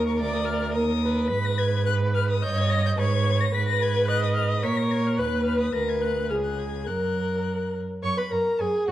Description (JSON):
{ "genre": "quick classical-period movement for string quartet", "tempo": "107 BPM", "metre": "2/4", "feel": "straight", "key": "F# major from 3.5 s", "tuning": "A4 = 440 Hz", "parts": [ { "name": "rich violin", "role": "melody", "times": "0.0-8.9 s", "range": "C#5 to B6", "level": "-32 LUFS", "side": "left 9 dB", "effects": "none" }, { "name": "rich violin", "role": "second line", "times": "0.0-8.9 s", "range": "G#4 to C#6", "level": "-31 LUFS", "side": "left 2 dB", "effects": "none" }, { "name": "rich viola", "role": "accompaniment", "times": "0.0-8.9 s", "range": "F#4 to Eb5", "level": "-27 LUFS", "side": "equal", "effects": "none" }, { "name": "clear cello", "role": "bass", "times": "0.0-8.9 s", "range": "C#2 to A#2", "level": "-25 LUFS", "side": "right 2 dB", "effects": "none" } ], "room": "moderate recital hall reverb, RT60 1.4 s", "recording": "dark, warm production", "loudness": "-22 LUFS", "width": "side -13 dB against mid", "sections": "0.0-8.0 A section", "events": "none", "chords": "0.2 Bb/D; 0.8 Eb5; 1.3 Abm; 2.4 Eb7/G; 3.0 Abm; 4.6 A#m7; 5.2 B/D#; 5.7 Bm/D; 6.3 C#5; 6.9 F#; 8.0 F#5", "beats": "| 0.20 0.76 | 1.31 1.87 | 2.43 2.99 | 3.54 4.08 | 4.64 5.19 | 5.74 6.30 | 6.88 7.46 | 8.03 8.60" }